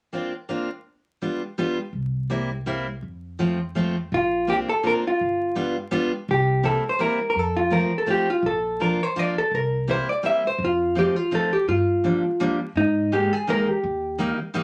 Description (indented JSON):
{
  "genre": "musette waltz",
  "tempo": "166 BPM",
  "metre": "3/4",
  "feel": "straight",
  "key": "Bb major",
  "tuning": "A4 = 440 Hz",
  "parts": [
    { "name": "fingerpicked steel-string acoustic guitar", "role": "accompaniment", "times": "0.1-14.6 s", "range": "Eb3 to F4", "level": "-27 LUFS", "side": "equal", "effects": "none" },
    { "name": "upright bass", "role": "bass", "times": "1.9-14.3 s", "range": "G1 to Ab2", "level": "-31 LUFS", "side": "equal", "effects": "none" },
    { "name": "vintage hollow-body jazz guitar", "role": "melody", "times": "4.1-14.4 s", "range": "Eb4 to E5", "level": "-24 LUFS", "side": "equal", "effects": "none" }
  ],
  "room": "moderate studio reverb, RT60 0.5 s",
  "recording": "vinyl crackle",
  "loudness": "-23 LUFS",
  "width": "mono",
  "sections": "0.0-4.1 A section; 4.1-14.6 B section",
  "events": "none",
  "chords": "0.0 Bbadd9; 0.9 G7; 1.9 C7; 3.0 F; 4.1 Bbadd9; 5.2 G7; 6.3 C7; 7.4 F; 8.4 Bb; 9.5 C7; 10.6 F7; 11.7 Gm7; 12.8 Absus2; 13.8 Eb"
}